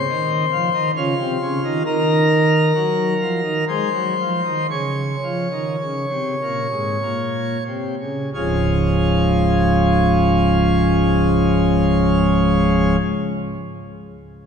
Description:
classical, chorale-style piece for pipe organ; 44-70 BPM; 3/4; rubato; Db major; A4 = 440 Hz
pipe organ, plenum; solo; 0.0-13.0 s; Db1 to Db5; -16 LUFS; equal
wet church reverb, RT60 3.4 s; -16 LUFS; side -7 dB against mid
0.0-8.3 A section; 8.3-12.4 B section
slowing down 0.5-8.3
0.0 F7(no3); 0.9 Cmadd11; 1.8 N.C.; 2.7 Ebm/Gb; 3.7 Ab7; 4.7 Db
0.08 0.94 | 1.84 2.74 3.68 | 4.70 5.80 7.02 | 8.35 9.71 11.07

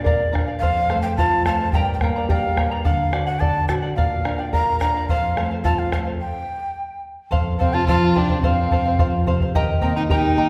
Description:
andean folk, Andean ensemble; 108 BPM; 2/4; straight; A4 = 441 Hz
breathy mellow large quena; melody; 0.0-10.5 s; D5 to Bb5; -26 LUFS; equal
charango; accompaniment; 0.0-10.5 s; G4 to Bb5; -30 LUFS; equal
nylon-string guitar; accompaniment; 0.0-10.5 s; F2 to D5; -27 LUFS; equal
bombo; percussion; 0.1-10.5 s; -25 LUFS; equal
rich violin; second line; 7.6-10.5 s; C4 to F4; -26 LUFS; equal
wet recital hall reverb, RT60 1.4 s; recorded in a church or concert hall; -20 LUFS; mono
0.0-7.3 A section; 7.3-10.5 B section
stop 6.2-7.3
0.0 Bb; 0.6 F; 1.7 Gm; 2.9 D; 4.0 Bb; 5.1 F; 6.2 N.C.; 7.3 F; 9.5 Eb
0.06 | 0.62 1.18 | 1.74 2.30 | 2.85 3.41 | 3.97 4.53 | 5.09 5.65 | 6.21 6.76 | 7.32 7.88 | 8.43 8.99 | 9.55 10.10

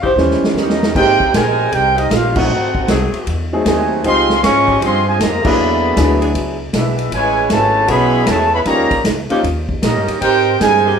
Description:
jazz, big band swing; 155 BPM; 4/4; swing 64% on 8ths; A4 = 440 Hz
clear grand piano; accompaniment; 0.0-9.4 s; Fb3 to C5; -17 LUFS; left 1 dB
warm saxophone section; sustained chords; 0.0-10.9 s; Cb3 to Bb4; -22 LUFS; left 3 dB
upright bass; bass; 0.0-11.0 s; Ab1 to Bb2; -21 LUFS; left 1 dB
swinging big-band drum kit; drums; 0.0-10.7 s; crash cymbal, hi-hat, kick drum, ride cymbal, snare drum; -20 LUFS; right 1 dB
mellow trumpet section; melody; 0.6-11.0 s; C4 to Db6; -16 LUFS; equal
mellow trombone section; second line; 0.6-11.0 s; C3 to Ab4; -18 LUFS; right 4 dB
moderate large studio reverb, RT60 0.8 s; band playing live in one room; -12 LUFS; side -7 dB against mid
0.9-11.0 A section
drum fill 0.2-0.9; band accent 2.3, 5.4
0.2 Eb7b9; 0.9 Abmaj9; 2.5 Ab7b9; 4.0 Dbmaj9#11; 5.6 E7; 7.1 Amaj13; 8.7 Eb7; 10.2 Abmaj9
0.17 0.56 | 0.94 1.33 1.72 2.11 | 2.49 2.88 3.27 3.65 | 4.04 4.42 4.81 5.19 | 5.58 5.96 6.35 6.73 | 7.12 7.50 7.89 8.28 | 8.66 9.05 9.44 9.82 | 10.21 10.60

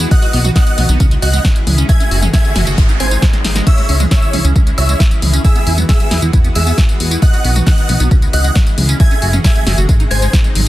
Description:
uplifting trance; 135 BPM; 4/4; straight; C# minor; A4 = 440 Hz
lush unison pad; sustained chords; 0.0-10.7 s; B#2 to F#4; -24 LUFS; equal; chorus, sidechain pumping
liquid acid bass; arpeggios; 0.0-10.6 s; F#3 to F#4; -24 LUFS; right 2 dB; wide subtle chorus, sidechain pumping, digital delay
plucky analog bass; bass; 0.0-10.7 s; F#1 to E2; -14 LUFS; equal; sidechain pumping
punchy analog drum machine; drums; 0.0-10.6 s; crash cymbal, hi-hat, snare drum, tambourine, toms; -19 LUFS; left 1 dB; sidechain pumping on hats, sidechain pumping on perc, sidechain pumping on toms, sidechain pumping on cymbals
big supersaw lead; melody; 0.1-10.4 s; G#4 to G#5; -22 LUFS; equal; phaser, sidechain pumping, digital delay
supersaw stab; second line; 0.1-10.4 s; E6 to G#6; -26 LUFS; right 2 dB; sidechain pumping, digital delay
electronic kick drum; drums; 0.1-10.4 s; -11 LUFS; equal
noise sweep; sound effects; 2.1-3.7 s; -28 LUFS; right 2 dB
little or no reverb; dense, heavily limited modern master; -10 LUFS; side -15 dB against mid
0.0-10.7 A section
noise sweep 2.1-3.7; drum fill 3.3-3.7
0.1 B; 1.0 C#m; 1.9 F#madd9; 2.8 G#; 3.7 C#m; 5.4 Eadd9; 7.2 B; 8.1 C#m; 9.0 F#madd9; 9.9 G#
| 0.11 0.56 1.00 1.45 | 1.89 2.33 2.78 3.22 | 3.67 4.11 4.56 5.00 | 5.45 5.89 6.33 6.78 | 7.22 7.67 8.11 8.56 | 9.00 9.45 9.89 10.33

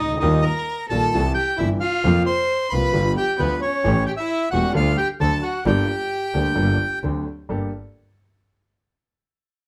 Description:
tango; 132 BPM; 4/4; rubato; G minor; A4 = 440 Hz
bandoneon; melody; 0.0-7.0 s; B4 to C6; -27 LUFS; equal; plate reverb
warm violin; second line; 0.0-7.0 s; B3 to C5; -28 LUFS; equal
clear double bass; bass; 0.0-7.7 s; E1 to F2; -26 LUFS; equal
clear concert grand piano; accompaniment; 0.1-7.7 s; E1 to A4; -26 LUFS; equal
light reverb; -21 LUFS; mono
0.0-7.5 A section; 7.5-9.3 B section
0.2 Ebadd9; 1.1 C; 2.0 Fsus4; 2.9 G7; 3.8 A7; 4.8 Dsus4; 5.2 D; 5.7 Gmadd9; 7.0 D7; 7.5 Gmadd9
| 0.22 0.68 1.13 1.59 | 2.04 2.49 2.94 3.40 | 3.85 4.30 4.75 5.20 | 5.66 6.11 6.57 7.02 | 7.48

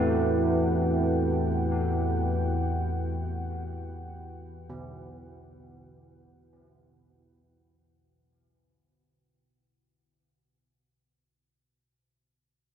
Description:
dark ambient drone; free time; E minor; A4 = 442 Hz
dark analog pad; sustained chords; 0.0-7.7 s; E4 to G5; -30 LUFS; right 1 dB; chorus
carillon bells; arpeggios; 0.0-11.9 s; B2 to A3; -32 LUFS; right 2 dB; tape echo
deep rumbling drone; drone; 0.0-7.8 s; E2 to E3; -30 LUFS; left 1 dB; built-in reverb, phaser
wet huge ambient reverb, RT60 8.3 s; in a vast, echoing space; -25 LUFS; side -8 dB against mid
0.0-7.7 A section
fade-out 0.0-7.7
0.0 Emadd9
free time

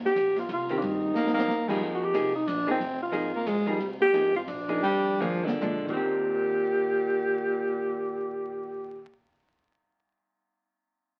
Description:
jazz, small-group swing and bop; 126-182 BPM; 3/4; swing 62% on 8ths; Eb major; A4 = 440 Hz
upright bass; bass; 0.0-9.0 s; F1 to Bb2; -44 LUFS; equal
mellow alto saxophone; melody; 0.1-9.1 s; C4 to G4; -29 LUFS; equal
open jazz drum kit; drums; 0.1-6.0 s; crash cymbal, hi-hat, kick drum, ride cymbal, snare drum, toms; -39 LUFS; equal
hollow-body jazz guitar; accompaniment; 0.7-9.2 s; Eb3 to Ab4; -34 LUFS; equal
breathy baritone saxophone; second line; 1.2-9.0 s; Bb2 to Bb3; -32 LUFS; equal
wet studio reverb, RT60 0.8 s; very old 78 rpm record, vinyl crackle; -27 LUFS; mono
0.0-1.8 A section; 1.8-6.1 B section; 6.1-8.9 C section
drum fill 1.1-1.5, 5.2-6.1; slowing down 3.8-6.1
0.0 Eb6; 1.8 Fm11; 2.5 Bb7; 2.8 Fm7; 3.5 Bb5; 3.8 Fm11; 4.5 Bb7; 4.8 Fmadd9; 5.6 Bb7; 5.8 Eb6
0.16 0.49 | 0.82 1.15 1.48 | 1.81 2.14 2.47 | 2.80 3.13 3.46 | 3.79 4.12 4.46 | 4.82 5.20 5.61 | 6.06 6.53 7.01 | 7.48 7.96 8.43

